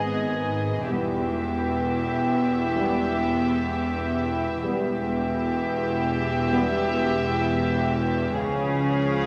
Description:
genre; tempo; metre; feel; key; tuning
cinematic, suspense film score; 64 BPM; 4/4; straight; unclear; A4 = 441 Hz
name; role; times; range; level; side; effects
dark studio violin section; melody; 0.0-9.3 s; D#5 to E#5; -35 LUFS; equal; none
warm symphonic violin section; second line; 0.0-9.3 s; G4 to G#4; -32 LUFS; equal; none
dark symphonic viola section; accompaniment; 0.0-9.3 s; B3 to C#4; -34 LUFS; equal; none
glass harmonica; sustained chords; 0.0-9.3 s; D#4 to G#5; -35 LUFS; equal; none
warm symphonic cello section; bass; 0.0-9.3 s; E2 to C#3; -31 LUFS; equal; none
warm symphonic double bass section; bass; 0.0-9.3 s; E1 to C#2; -32 LUFS; equal; none
mellow French horn section; sustained chords; 0.9-9.3 s; E#3 to C#4; -32 LUFS; equal; none
room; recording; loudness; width
wet scoring stage reverb, RT60 1.5 s; faint mains hum; -25 LUFS; mono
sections
0.0-9.3 A section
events
none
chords
0.0 G#m; 0.9 Em; 8.4 C#

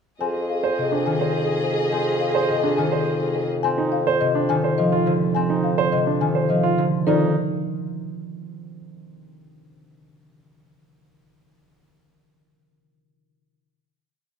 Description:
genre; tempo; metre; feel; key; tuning
classical, minimalist pattern music; 105 BPM; 3/4; straight; F dorian; A4 = 440 Hz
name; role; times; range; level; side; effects
folk marimba with soft mallets; melody; 0.2-7.3 s; C5 to Ab5; -27 LUFS; left 10 dB; none
clear French horn; second line; 0.2-3.4 s; Ab4; -27 LUFS; right 2 dB; none
concert harp; accompaniment; 0.2-8.8 s; C3 to C4; -24 LUFS; right 1 dB; none
warm studio violin section; sustained chords; 0.2-3.5 s; Ab4 to Eb5; -30 LUFS; left 4 dB; none
mellow bassoon; bass; 0.2-7.3 s; F2; -26 LUFS; left 1 dB; none
warm grand piano; arpeggios; 0.6-7.3 s; D4 to C5; -24 LUFS; right 5 dB; none
room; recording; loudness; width
moderate scoring stage reverb, RT60 1.6 s; minimal, uncompressed stereo recording; -19 LUFS; side -6 dB against mid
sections
0.2-7.1 A section; 7.1-8.8 final chord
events
none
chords
0.2 Fm7; 7.1 F5

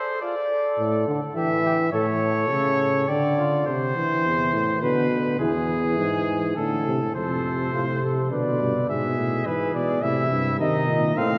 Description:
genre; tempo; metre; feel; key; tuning
classical, imitative canzona for brass ensemble; 104 BPM; 3/4; straight; unclear; A4 = 439 Hz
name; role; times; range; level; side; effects
clear trumpet; melody; 0.0-11.4 s; G#4 to F5; -27 LUFS; equal; none
warm flugelhorn; second line; 0.0-3.7, 7.2-11.3 s; C4 to B4; -33 LUFS; equal; none
mellow trombone; accompaniment; 0.8-11.4 s; A2 to A3; -28 LUFS; equal; none
warm bass trombone; bass; 4.2-11.4 s; E2 to D3; -29 LUFS; equal; none
room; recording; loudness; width
wet church reverb, RT60 3.6 s; none; -23 LUFS; mono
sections
0.0-7.2 A section; 7.2-11.4 B section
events
none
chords
0.2 D5; 1.4 Em; 1.9 A; 3.1 Dm; 3.7 Am/C; 4.8 Bm; 5.4 E; 6.6 Am; 7.2 F; 8.3 G; 8.9 E/G#; 10.0 Am; 10.6 Adim

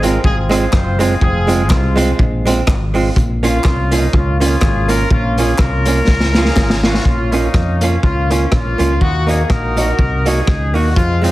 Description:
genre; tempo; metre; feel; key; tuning
ska; 123 BPM; 4/4; swing 56% on 8ths; Bb minor; A4 = 438 Hz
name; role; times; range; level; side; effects
warm horn section; melody; 0.0-11.3 s; Ab3 to C5; -20 LUFS; left 1 dB; slapback echo
archtop guitar, miked and amplified; accompaniment; 0.0-11.3 s; Ab3 to Gb4; -19 LUFS; right 3 dB; slapback echo
fingered electric bass; bass; 0.0-11.3 s; F1 to F2; -17 LUFS; equal; none
raw garage drum kit; drums; 0.0-11.3 s; hi-hat, kick drum, rim click, snare drum; -17 LUFS; equal; none
group handclap; percussion; 0.7-6.7 s; none; -29 LUFS; left 2 dB; none
room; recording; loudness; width
studio reverb; heavily compressed radio sound, multiband compression; -12 LUFS; side -17 dB against mid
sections
0.0-7.1 A section; 7.1-11.3 B section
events
drum fill 6.1-7.1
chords
0.0 Fm; 3.2 Bbm; 9.0 Ebm

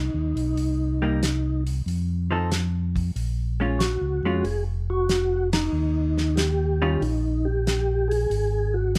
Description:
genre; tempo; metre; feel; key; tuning
soul jazz organ trio; 93 BPM; 4/4; swing 68% on 8ths; unclear; A4 = 440 Hz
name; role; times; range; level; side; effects
percussive tonewheel organ; melody; 0.0-9.0 s; Eb4 to Ab4; -28 LUFS; equal; slow rotary speaker, chorus vibrato
mellow tonewheel organ; bass; 0.0-9.0 s; F1 to F2; -27 LUFS; equal; overdrive, chorus vibrato, slow rotary speaker
warm soul drum kit; drums; 0.4-9.0 s; hi-hat, kick drum, ride cymbal, snare drum; -30 LUFS; equal; none
vintage hollow-body jazz guitar; accompaniment; 1.0-7.0 s; Eb3 to A4; -29 LUFS; equal; none
room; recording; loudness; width
little or no reverb; close, detailed microphones; -24 LUFS; mono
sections
0.0-9.0 A section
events
band accent 5.4-5.7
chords
0.0 Ab (rootless); 0.6 Cm7; 1.9 F7; 3.2 Bbm7; 5.7 Eb; 8.3 Ab7(no3)

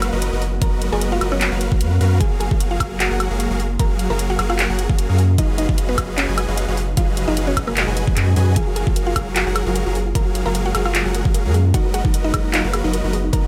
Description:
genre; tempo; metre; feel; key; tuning
future bass; 151 BPM; 4/4; swing 54% on 16ths, half-time; F# major; A4 = 439 Hz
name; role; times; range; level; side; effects
shimmering ambient pad; sustained chords; 0.0-13.5 s; B2 to F#4; -33 LUFS; equal; chorus, built-in reverb, sidechain pumping
supersaw chords; riff; 0.0-13.5 s; F#3 to G#5; -27 LUFS; equal; sidechain pumping, digital delay
saturated sub bass; bass; 0.0-13.5 s; F#1 to F#2; -23 LUFS; equal; sidechain pumping
trap drum kit; drums; 0.0-13.4 s; handclaps, hi-hat, woodblock; -25 LUFS; equal; none
mallet-like synth pluck; melody; 0.6-13.5 s; A#3 to A#5; -29 LUFS; equal; chorus, sidechain pumping, digital delay
electronic kick drum; drums; 0.6-13.4 s; none; -22 LUFS; equal; overdrive
soft round pluck; arpeggios; 8.6-13.5 s; D#4 to A#4; -31 LUFS; equal; chorus, sidechain pumping, digital delay
room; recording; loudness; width
little or no reverb; none; -19 LUFS; mono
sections
0.0-13.5 A section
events
none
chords
0.0 G#m9/F#; 2.2 F#maj9; 5.4 C#9/F#; 8.6 F#maj9; 11.7 G#m9/F#

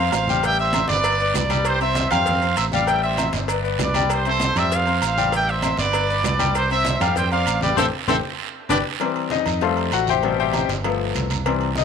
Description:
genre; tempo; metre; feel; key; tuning
latin, salsa; 196 BPM; 4/4; straight; C major; A4 = 441 Hz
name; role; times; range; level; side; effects
clear trumpet section; melody; 0.0-8.8 s; G4 to G5; -22 LUFS; right 3 dB; none
bright concert grand piano; accompaniment; 0.0-11.8 s; B2 to G5; -24 LUFS; left 13 dB; none
modern bright fingered electric bass; bass; 0.0-11.8 s; G1 to F2; -25 LUFS; right 1 dB; none
congas; percussion; 0.1-11.8 s; none; -30 LUFS; right 2 dB; none
cowbell; percussion; 0.1-11.8 s; none; -32 LUFS; left 10 dB; none
guiro; percussion; 0.1-11.8 s; none; -32 LUFS; right 16 dB; none
maracas; percussion; 0.1-8.8 s; none; -38 LUFS; left 12 dB; none
timbales and agogo bells; percussion; 0.1-11.8 s; none; -29 LUFS; right 14 dB; none
bright baritone saxophone; second line; 7.8-8.8 s; C4 to D4; -27 LUFS; left 12 dB; none
room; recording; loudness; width
light reverb, studio reverb; 1960s-style stereo with parts hard left and right; -18 LUFS; side -6 dB against mid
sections
0.0-9.0 A section; 9.0-11.8 B section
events
band accent 7.8-9.0; drum fill 8.1-9.0; grand piano solo 9.0-11.8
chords
0.4 Am7; 1.0 G; 1.7 C; 2.3 Fadd9; 2.9 Am7; 3.5 G; 4.1 C; 4.7 Fadd9; 5.3 Am7; 5.9 G; 6.6 C; 7.2 Fadd9; 7.8 Am7; 8.4 G; 9.0 C; 9.6 Fadd9; 10.2 Am7; 10.8 G7

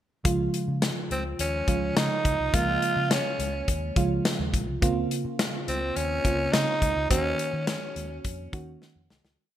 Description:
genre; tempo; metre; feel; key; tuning
1980s-style pop; 105 BPM; 4/4; straight; Db major; A4 = 440 Hz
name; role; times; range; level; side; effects
mellow FM electric piano; accompaniment; 0.2-9.4 s; Db3 to Gb4; -30 LUFS; right 3 dB; chorus
vintage muted fingered electric bass; bass; 0.3-9.4 s; Bb1 to Eb3; -33 LUFS; equal; none
modern studio drum kit; drums; 0.3-9.4 s; hi-hat, kick drum, snare drum; -27 LUFS; left 1 dB; gated reverb
growling tenor saxophone; melody; 1.1-8.2 s; C4 to F4; -28 LUFS; right 1 dB; digital delay
room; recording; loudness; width
moderate plate reverb, RT60 2.1 s; bright 1980s-style digital production; -24 LUFS; side -11 dB against mid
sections
0.2-9.4 verse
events
fade-out 7.1-9.4; drum fill 8.8-9.4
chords
0.2 Db; 4.8 Bbmadd9/Db; 7.1 Ebm7

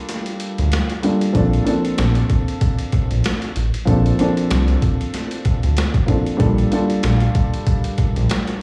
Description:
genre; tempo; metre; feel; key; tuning
hip hop, boom-bap hip-hop; 95 BPM; 4/4; swing 58% on 16ths; Bb major; A4 = 440 Hz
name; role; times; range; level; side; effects
dark upright piano; accompaniment; 0.0-8.6 s; F3 to A4; -23 LUFS; equal; cassette tape
boom bap sampler-style drum kit; drums; 0.1-8.6 s; hi-hat, kick drum, snare drum; -23 LUFS; equal; none
round analog bass; bass; 0.6-8.3 s; A1 to D2; -19 LUFS; equal; none
room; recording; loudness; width
little or no reverb; played on a big sound system in a bare room, large studio reverb, small room reverb; -18 LUFS; mono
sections
0.0-1.4 A section; 1.4-8.6 A section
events
break 0.0-1.4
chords
0.0 Gm9; 1.4 Bbmaj9; 6.4 Gm9

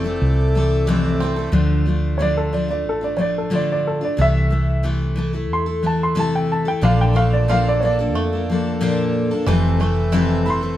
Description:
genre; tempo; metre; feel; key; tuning
acoustic folk duo or small band; 91 BPM; 4/4; straight; unclear; A4 = 441 Hz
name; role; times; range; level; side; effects
picked steel-string acoustic guitar; accompaniment; 0.0-10.8 s; F2 to A4; -21 LUFS; left 2 dB; none
hand-pumped harmonium; sustained chords; 0.0-1.5, 6.8-10.8 s; Bb2 to D5; -28 LUFS; right 1 dB; none
bluegrass banjo; arpeggios; 0.0-1.6, 6.8-10.8 s; D3 to F4; -30 LUFS; right 3 dB; none
hollow-body short-scale fingered electric bass; bass; 0.0-10.8 s; F1 to F2; -20 LUFS; equal; none
warm upright piano; melody; 2.2-10.8 s; A4 to C6; -22 LUFS; right 1 dB; none
room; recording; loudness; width
moderate studio reverb, RT60 0.7 s; dark, warm production; -16 LUFS; side -13 dB against mid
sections
0.0-1.5 A section; 1.5-10.8 B section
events
upright piano solo 1.5-10.8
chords
0.0 Fmaj7; 1.5 Dm; 4.2 Am/C; 6.8 Bbmaj7; 9.5 Fmaj7

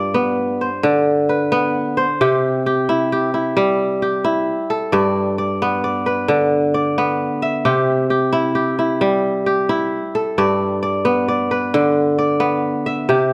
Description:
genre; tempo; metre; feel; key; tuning
west african traditional; 88 BPM (dotted quarters); 12/8; straight; C major; A4 = 439 Hz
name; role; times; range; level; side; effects
kora; solo; 0.0-13.3 s; G2 to E5; -18 LUFS; equal; none
room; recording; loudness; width
moderate recital hall reverb, RT60 1.5 s; none; -18 LUFS; mono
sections
0.0-2.2 A section; 2.2-13.3 B section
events
none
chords
0.0 G; 2.2 C; 4.9 G; 7.6 C; 10.4 G

